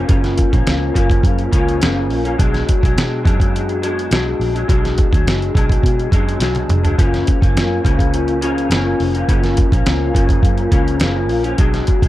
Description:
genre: indie pop, bedroom pop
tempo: 104 BPM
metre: 4/4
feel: straight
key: F# major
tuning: A4 = 440 Hz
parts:
  - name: electric guitar through a small old amp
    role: accompaniment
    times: 0.0-12.1 s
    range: F#2 to D4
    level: -19 LUFS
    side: left 2 dB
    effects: ensemble chorus, vibrato effect
  - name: vintage muted fingered electric bass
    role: bass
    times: 0.0-12.1 s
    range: E#1 to B2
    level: -20 LUFS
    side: equal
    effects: none
  - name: dusty soul sampler-style drum kit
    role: drums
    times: 0.1-12.1 s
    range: hi-hat, kick drum, snare drum, toms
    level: -15 LUFS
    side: equal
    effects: none
room: little or no reverb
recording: none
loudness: -13 LUFS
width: side -15 dB against mid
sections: 0.0-12.1 A section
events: drum fill 6.4-7.0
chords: 0.0 F#maj7; 2.4 Bm6; 7.0 F#maj7

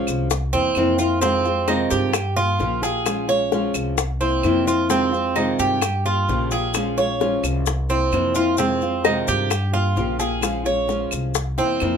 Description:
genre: latin, Cuban son and guajira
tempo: 130 BPM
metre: 4/4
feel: straight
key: F minor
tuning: A4 = 439 Hz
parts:
  - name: nylon-string guitar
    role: accompaniment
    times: 0.0-12.0 s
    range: C3 to G4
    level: -23 LUFS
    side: left 2 dB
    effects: none
  - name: Cuban tres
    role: arpeggios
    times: 0.0-12.0 s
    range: C4 to Db5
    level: -22 LUFS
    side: right 4 dB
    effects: none
  - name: upright bass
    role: bass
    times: 0.1-12.0 s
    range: Bb1 to G2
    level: -25 LUFS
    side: equal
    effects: none
  - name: bongos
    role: percussion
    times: 0.1-11.9 s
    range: none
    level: -26 LUFS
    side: left 10 dB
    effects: none
  - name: claves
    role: percussion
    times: 0.1-12.0 s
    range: none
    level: -31 LUFS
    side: right 4 dB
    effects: none
  - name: maracas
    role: percussion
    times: 0.1-12.0 s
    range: none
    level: -32 LUFS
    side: left 8 dB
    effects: none
room: moderate small room reverb, RT60 0.5 s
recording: minimal, uncompressed stereo recording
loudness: -18 LUFS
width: side -7 dB against mid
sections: 0.0-12.0 A section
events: drum fill 11.6-12.0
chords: 0.3 C7; 1.2 Fm9; 2.1 Gm7b5; 3.1 Bbm7; 4.0 C7; 4.9 Fm9; 5.8 Gm7b5; 6.7 Bbm7; 7.7 C7; 8.6 Fm9; 9.5 Gm7b5; 10.4 Bbm7; 11.4 C7

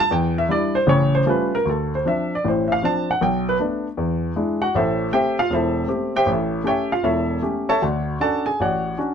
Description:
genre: solo jazz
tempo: 156 BPM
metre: 4/4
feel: swing 66% on 8ths, rubato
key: unclear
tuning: A4 = 444 Hz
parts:
  - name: warm baby grand piano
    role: solo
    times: 0.0-9.1 s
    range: E1 to A5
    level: -18 LUFS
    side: equal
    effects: none
room: light reverb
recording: close, detailed microphones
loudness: -18 LUFS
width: side -7 dB against mid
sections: 0.0-1.7 A section; 1.7-9.1 A section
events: grand piano solo 0.0-9.1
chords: 0.1 Em7; 0.9 Aaug7; 1.7 Dm7; 3.2 Bm7; 4.0 E7; 4.7 Am7; 6.3 A7; 7.8 Dmaj7

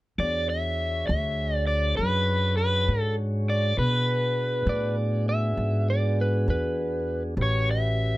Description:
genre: blues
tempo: 67 BPM (dotted quarters)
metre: 12/8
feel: straight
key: E mixolydian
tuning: A4 = 440 Hz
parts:
  - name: crunchy overdriven guitar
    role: melody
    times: 0.2-8.2 s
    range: B4 to E5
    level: -26 LUFS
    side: equal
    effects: none
  - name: mellow tonewheel organ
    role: sustained chords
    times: 0.2-8.2 s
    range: B3 to C#5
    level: -33 LUFS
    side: equal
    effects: slow rotary speaker
  - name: upright bass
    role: bass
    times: 0.2-8.2 s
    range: A1 to B2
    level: -26 LUFS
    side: equal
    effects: none
  - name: electric slide guitar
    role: second line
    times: 4.7-7.2 s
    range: B4 to E5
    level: -30 LUFS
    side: right 2 dB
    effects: none
room: light reverb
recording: dark, warm production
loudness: -23 LUFS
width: side -18 dB against mid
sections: 0.2-8.2 A section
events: none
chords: 0.2 E13; 7.4 A13

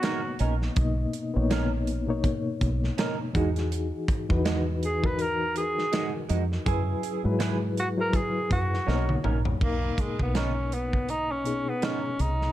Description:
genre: lush 1970s-style soul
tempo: 81 BPM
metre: 4/4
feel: swing 58% on 16ths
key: B major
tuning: A4 = 441 Hz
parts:
  - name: breathy tenor saxophone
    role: melody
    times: 0.0-0.4, 4.8-12.5 s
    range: G#3 to B4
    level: -30 LUFS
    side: equal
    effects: none
  - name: reed electric piano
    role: accompaniment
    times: 0.0-12.5 s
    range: B2 to D#5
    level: -31 LUFS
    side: left 3 dB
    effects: fast tremolo
  - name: electric guitar through a small old amp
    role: riff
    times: 0.0-12.0 s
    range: G#3 to B4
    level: -34 LUFS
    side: right 7 dB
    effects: lush chorus
  - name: modern studio drum kit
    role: drums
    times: 0.0-12.5 s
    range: crash cymbal, hi-hat, kick drum, snare drum, toms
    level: -30 LUFS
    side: right 1 dB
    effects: none
  - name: deep dub fingered electric bass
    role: bass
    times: 0.4-12.5 s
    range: A#1 to G#2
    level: -28 LUFS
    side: equal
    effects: none
  - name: mellow horn section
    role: stabs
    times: 6.7-7.2 s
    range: C#4 to G#4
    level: -35 LUFS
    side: right 15 dB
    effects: none
room: small room ambience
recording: dark, warm production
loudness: -24 LUFS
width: side -13 dB against mid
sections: 0.0-9.6 A section; 9.6-12.5 B section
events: band accent 6.7-9.6; drum fill 8.9-9.6; tenor saxophone solo 9.6-12.5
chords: 0.0 Bmaj9; 3.3 Emaj9; 6.7 F#9sus4; 8.9 Bmaj9; 9.6 Bmaj7

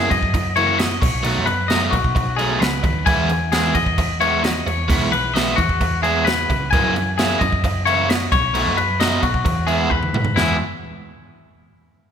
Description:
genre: math rock and midwest emo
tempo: 132 BPM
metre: 4/4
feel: straight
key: E major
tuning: A4 = 440 Hz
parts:
  - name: twangy electric guitar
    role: arpeggios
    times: 0.0-10.6 s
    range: E4 to G#5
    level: -20 LUFS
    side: left 5 dB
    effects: none
  - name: biting overdriven guitar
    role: riff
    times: 0.0-10.6 s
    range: B2 to G#4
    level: -22 LUFS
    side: right 3 dB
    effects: none
  - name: hollow-body short-scale picked electric bass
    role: bass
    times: 0.0-10.6 s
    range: B1 to G#2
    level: -24 LUFS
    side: equal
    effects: none
  - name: crisp fusion drum kit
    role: drums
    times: 0.1-10.5 s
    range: crash cymbal, kick drum, snare drum, toms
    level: -22 LUFS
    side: right 1 dB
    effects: none
room: light reverb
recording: none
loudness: -16 LUFS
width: side -8 dB against mid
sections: 0.0-10.4 A section; 10.4-12.1 B section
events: drum fill 9.9-10.4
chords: 0.0 F#7; 1.0 B9; 3.1 Emaj7; 6.7 F#9; 8.3 B9; 9.4 E

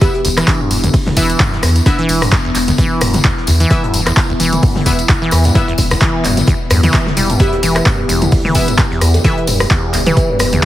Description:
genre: acid house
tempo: 130 BPM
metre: 4/4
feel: swing 56% on 16ths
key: E minor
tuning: A4 = 440 Hz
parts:
  - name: kalimba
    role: melody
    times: 0.0-2.5, 7.4-10.3 s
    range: D4 to B4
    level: -22 LUFS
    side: equal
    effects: ping-pong delay
  - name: warbly tape-like pad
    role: sustained chords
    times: 0.0-10.7 s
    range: E3 to G4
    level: -22 LUFS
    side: left 2 dB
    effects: chorus, built-in reverb, sidechain pumping
  - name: acid bass, saw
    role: riff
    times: 0.0-10.7 s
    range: D2 to G3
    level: -18 LUFS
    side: equal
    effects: tube saturation, cassette tape, ping-pong delay
  - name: band-passed chord stab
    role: stabs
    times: 0.0-9.4 s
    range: B3 to E5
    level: -25 LUFS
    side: left 2 dB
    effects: chorus, ping-pong delay
  - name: electronic kick drum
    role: drums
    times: 0.0-10.7 s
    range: none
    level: -15 LUFS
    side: equal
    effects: overdrive
  - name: punchy analog drum machine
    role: drums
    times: 0.0-10.6 s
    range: handclaps, hi-hat, rim click, toms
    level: -18 LUFS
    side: equal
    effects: none
  - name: warm soul drum kit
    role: drums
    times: 0.0-10.7 s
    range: hi-hat, snare drum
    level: -32 LUFS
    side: right 2 dB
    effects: none
  - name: tambourine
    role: percussion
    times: 0.0-10.7 s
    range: none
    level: -24 LUFS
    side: left 4 dB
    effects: none
  - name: round analog bass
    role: bass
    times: 0.2-10.6 s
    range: E1 to E2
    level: -16 LUFS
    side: equal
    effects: sidechain pumping
room: light reverb, small room ambience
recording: heavily compressed radio sound, multiband compression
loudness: -11 LUFS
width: side -14 dB against mid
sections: 0.0-10.7 A section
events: none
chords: 0.0 E5

